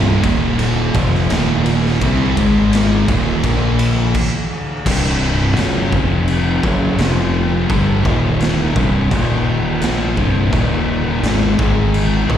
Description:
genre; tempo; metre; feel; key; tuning
stoner and doom metal; 85 BPM; 4/4; straight; unclear; A4 = 440 Hz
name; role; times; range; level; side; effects
distorted electric guitar; riff; 0.0-12.4 s; C2 to C4; -22 LUFS; right 3 dB; distortion, slapback echo
thick fuzz guitar; riff; 0.0-12.4 s; C2 to C4; -18 LUFS; left 5 dB; distortion, slapback echo
thick fuzz guitar; riff; 0.0-4.1 s; C2 to C4; -20 LUFS; right 10 dB; distortion, slapback echo
growling fingered electric bass; bass; 0.0-12.4 s; C1 to C2; -19 LUFS; equal; overdrive
raw garage drum kit; drums; 0.2-12.4 s; crash cymbal, kick drum, ride cymbal, snare drum; -20 LUFS; right 1 dB; none
room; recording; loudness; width
studio reverb; live gig heard through the venue's PA, recital hall reverb; -13 LUFS; side -10 dB against mid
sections
0.0-4.9 A section; 4.9-12.4 B section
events
stop 4.2-4.9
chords
0.0 Eb5; 2.4 Ab5; 3.1 Eb5; 3.4 Bb5; 4.2 N.C.; 4.9 C5; 5.9 F5; 6.6 F#5; 7.0 F5; 7.7 G5; 8.1 Eb5; 8.8 C5; 9.1 Eb5; 9.8 C5; 10.5 Eb5; 11.6 Ab5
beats
0.59 1.30 | 2.02 2.73 3.44 4.15 | 4.86 5.57 6.28 6.99 | 7.70 8.41 9.12 9.82 | 10.53 11.24 11.95

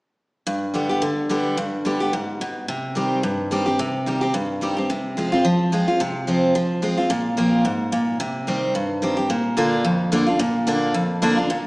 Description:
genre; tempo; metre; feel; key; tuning
bluegrass; 218 BPM; 4/4; swing 55% on 8ths; unclear; A4 = 442 Hz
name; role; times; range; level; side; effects
picked steel-string acoustic guitar; solo; 0.5-11.7 s; F2 to G4; -19 LUFS; equal; none
room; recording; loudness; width
wet recital hall reverb, RT60 1.4 s; recorded in a church or concert hall, small speaker sound; -19 LUFS; side -25 dB against mid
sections
0.5-9.3 A section; 9.3-11.7 B section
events
none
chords
0.5 G; 2.7 Cm; 4.9 Fm/C; 7.1 Bbsus2; 8.2 Cm; 9.3 Bb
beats
| 0.47 0.74 1.02 1.30 | 1.58 1.85 2.13 2.41 | 2.68 2.96 3.24 3.51 | 3.79 4.07 4.34 4.62 | 4.89 5.17 5.45 5.72 | 6.00 6.27 6.55 6.82 | 7.10 7.37 7.65 7.92 | 8.20 8.47 8.75 9.02 | 9.30 9.57 9.85 10.12 | 10.39 10.67 10.95 11.22 | 11.49

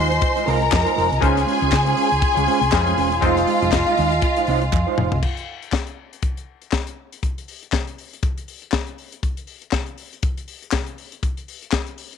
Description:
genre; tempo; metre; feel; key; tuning
disco; 120 BPM; 4/4; swing 56% on 16ths; unclear; A4 = 440 Hz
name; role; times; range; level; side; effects
clear symphonic string section; second line; 0.0-5.2 s; F4 to C6; -21 LUFS; left 1 dB; slapback echo
clav; accompaniment; 0.0-5.2 s; Ab3 to C5; -28 LUFS; left 12 dB; none
mellow electric guitar; accompaniment; 0.0-5.2 s; Ab3 to Eb5; -24 LUFS; right 16 dB; lush chorus
mellow hollow small flute group; sustained chords; 0.0-5.2 s; Db4 to C6; -24 LUFS; equal; none
hollow-body short-scale fingered electric bass; bass; 0.0-5.2 s; Fb1 to Db3; -22 LUFS; equal; none
tight funk drum kit; drums; 0.1-12.2 s; crash cymbal, handclaps, hi-hat, kick drum, snare drum, toms; -24 LUFS; left 3 dB; none
group handclap; percussion; 0.7-4.9 s; none; -31 LUFS; right 14 dB; none
room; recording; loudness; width
light reverb; 1960s-style stereo with parts hard left and right; -18 LUFS; side -7 dB against mid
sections
0.0-5.2 A section; 5.2-12.2 B section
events
drum fill 4.7-5.2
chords
0.0 Fm7; 1.2 Dbmaj7; 3.2 Fm7; 5.2 N.C.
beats
0.23 0.72 | 1.23 1.73 2.23 2.73 | 3.23 3.73 4.22 4.73 | 5.23 5.73 6.23 6.73 | 7.23 7.73 8.23 8.73 | 9.23 9.73 10.23 10.73 | 11.23 11.73

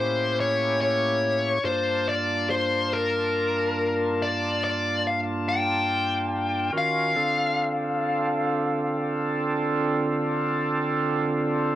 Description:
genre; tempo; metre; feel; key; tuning
blues; 47 BPM (dotted quarters); 12/8; straight; D minor; A4 = 440 Hz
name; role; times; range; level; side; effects
dark smooth lead guitar; melody; 0.0-11.8 s; Bb4 to G5; -24 LUFS; left 3 dB; overdrive, cassette tape
bright tonewheel organ; sustained chords; 0.0-11.8 s; G2 to A5; -26 LUFS; right 2 dB; slow rotary speaker, overdrive, cassette tape
room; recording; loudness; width
moderate booth ambience, RT60 0.3 s; home recording on cassette; -22 LUFS; side -13 dB against mid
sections
0.0-11.8 A section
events
none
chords
0.0 A7b9; 1.6 Gm9; 6.7 Dm7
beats
0.35 | 1.63 2.91 4.19 5.47 | 6.75 8.03 9.30 10.58

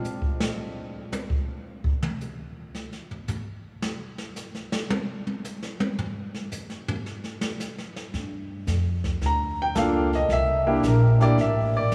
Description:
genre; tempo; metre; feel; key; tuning
jazz piano trio; 111 BPM; 4/4; swing 68% on 8ths; unclear; A4 = 440 Hz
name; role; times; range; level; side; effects
jazz brush drum kit; drums; 0.0-11.9 s; brushed snare drum, hi-hat, kick drum, snare drum, toms; -33 LUFS; equal; none
upright bass; bass; 8.1-11.9 s; G1 to G2; -26 LUFS; equal; none
warm concert grand piano; melody; 9.3-11.9 s; Bb3 to Bb5; -26 LUFS; equal; none
room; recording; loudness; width
wet cathedral reverb, RT60 5.4 s; recorded in a church or concert hall, small room ambience; -26 LUFS; mono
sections
0.0-11.9 A section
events
grand piano solo 0.0-11.9; drum solo 0.0-8.1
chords
0.0 N.C.; 8.1 Gm7; 10.3 C9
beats
0.04 0.58 1.12 | 1.66 2.20 2.74 3.28 | 3.82 4.36 4.90 5.44 | 5.98 6.52 7.06 7.60 | 8.14 8.68 9.22 9.76 | 10.30 10.84 11.38 11.91

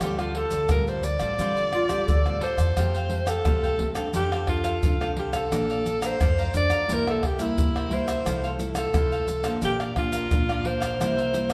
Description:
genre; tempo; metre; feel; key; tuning
samba and choro; 88 BPM; 4/4; straight; F major; A4 = 440 Hz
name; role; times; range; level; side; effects
breathy alto saxophone; melody; 0.0-11.5 s; E4 to D5; -29 LUFS; equal; none
cavaquinho; accompaniment; 0.0-11.5 s; D4 to Bb5; -36 LUFS; equal; none
nylon-string guitar; accompaniment; 0.0-11.5 s; G2 to A4; -34 LUFS; equal; none
upright bass; bass; 0.0-11.5 s; A1 to F2; -33 LUFS; equal; none
tube shaker, surdo, pandeiro and tamborim; percussion; 0.0-11.5 s; none; -30 LUFS; equal; none
mellow clarinet; second line; 1.7-2.8 s; F4 to A4; -33 LUFS; equal; none
room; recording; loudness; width
wet large studio reverb, RT60 1.4 s; band playing live in one room; -25 LUFS; mono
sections
0.0-2.8 A section; 2.8-11.5 B section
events
none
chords
0.0 Dm11; 2.8 Fadd9; 4.1 Dm7/F; 5.5 Bbmaj7; 6.9 C7; 8.3 Fmaj7/C; 9.6 Bb; 11.0 C7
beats
| 0.02 0.71 1.40 2.08 | 2.77 3.46 4.15 4.83 | 5.52 6.21 6.89 7.58 | 8.26 8.95 9.63 10.32 | 11.00

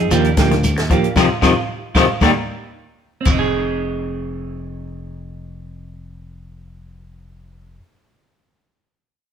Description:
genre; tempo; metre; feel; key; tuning
afrobeat; 114 BPM; 4/4; straight; F dorian; A4 = 440 Hz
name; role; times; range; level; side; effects
semi-hollow electric guitar; stabs; 0.0-8.0 s; F3 to Ab4; -21 LUFS; right 4 dB; spring reverb
fingered electric bass; bass; 0.0-7.8 s; F1 to F2; -24 LUFS; left 1 dB; none
electric guitar at the edge of break-up; arpeggios; 0.1-3.3 s; C3 to G3; -19 LUFS; left 6 dB; none
compact cocktail drum kit; drums; 0.1-3.4 s; crash cymbal, hi-hat, kick drum, snare drum; -20 LUFS; equal; none
congas; percussion; 0.1-3.4 s; none; -25 LUFS; left 2 dB; none
shekere; percussion; 0.1-3.4 s; none; -28 LUFS; right 3 dB; none
claves; percussion; 0.3-3.4 s; none; -32 LUFS; right 1 dB; none
room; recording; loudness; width
moderate stone room reverb, RT60 1.1 s; band playing live in one room; -15 LUFS; side -8 dB against mid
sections
0.0-3.3 A section; 3.3-7.5 B section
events
band accent 1.2-3.3; drum fill 2.6-3.3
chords
0.1 Ebmaj9; 1.2 F5; 2.2 Ebmaj7; 3.3 Fm7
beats
0.11 0.63 | 1.16 1.68 2.21 2.73 | 3.26 3.78 4.31 4.83 | 5.36 5.88 6.41 6.93

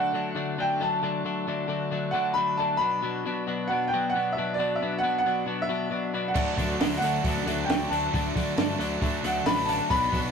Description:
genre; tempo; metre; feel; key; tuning
indie rock; 135 BPM; 4/4; straight; D major; A4 = 440 Hz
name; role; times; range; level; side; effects
clear upright piano; melody; 0.0-10.3 s; D5 to B5; -27 LUFS; equal; none
overdriven tonewheel organ; sustained chords; 0.0-10.3 s; D3 to D5; -45 LUFS; right 1 dB; none
twelve-string electric guitar; riff; 0.0-10.3 s; B2 to D4; -29 LUFS; left 3 dB; none
cranked stack guitar; riff; 6.3-10.3 s; F#3 to F#4; -33 LUFS; right 5 dB; overdrive
growling picked electric bass; bass; 6.4-10.3 s; A1 to D3; -33 LUFS; equal; overdrive
compact cocktail drum kit; drums; 6.4-10.2 s; crash cymbal, hi-hat, kick drum, snare drum; -28 LUFS; right 2 dB; none
room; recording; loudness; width
moderate small room reverb, RT60 0.5 s; rough rehearsal-room recording; -24 LUFS; side -6 dB against mid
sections
0.0-10.3 A section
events
none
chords
0.0 D; 2.8 Bm; 6.4 D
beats
0.15 0.60 | 1.04 1.49 1.93 2.37 | 2.82 3.26 3.71 4.15 | 4.59 5.04 5.48 5.92 | 6.37 6.81 7.25 7.70 | 8.14 8.58 9.02 9.47 | 9.91

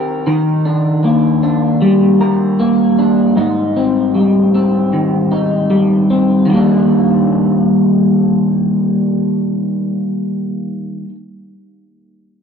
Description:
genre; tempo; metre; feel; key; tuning
indie pop; 77 BPM; 4/4; swing 55% on 16ths; Eb major; A4 = 440 Hz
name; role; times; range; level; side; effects
electric guitar through a small old amp; accompaniment; 0.0-11.1 s; Ab2 to Bb4; -12 LUFS; equal; analog chorus, warbly pitch drift
room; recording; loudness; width
moderate plate reverb, RT60 3.0 s; dark, warm production; -11 LUFS; side -7 dB against mid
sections
0.3-6.5 A section; 6.5-9.6 B section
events
none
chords
0.3 Ebmaj7; 3.4 Abmaj7; 6.5 Ebmaj7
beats
| 0.26 1.04 1.82 2.60 | 3.38 4.16 4.93 5.71 | 6.49 7.27 8.05 8.83

